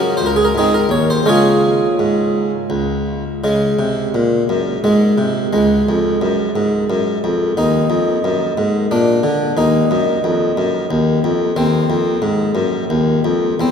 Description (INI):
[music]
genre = classical, baroque-style suite movement for harpsichord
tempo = 81-92 BPM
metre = 3/4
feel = rubato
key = Db major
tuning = A4 = 440 Hz
[part]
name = harpsichord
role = solo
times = 0.0-13.7 s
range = Db2 to Db5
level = -14 LUFS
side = equal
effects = none
[sound]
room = wet cathedral reverb, RT60 5.3 s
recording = heard from further back in the room, faint mains hum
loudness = -14 LUFS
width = side -7 dB against mid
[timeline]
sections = 0.0-3.4 A section; 3.4-13.7 B section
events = none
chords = 0.0 Gb; 0.5 Ab; 1.3 Db; 3.4 Db5; 4.8 Ab; 5.5 Db; 7.6 Ebm; 8.9 Bb; 9.6 Ebm; 11.6 Cdim/Eb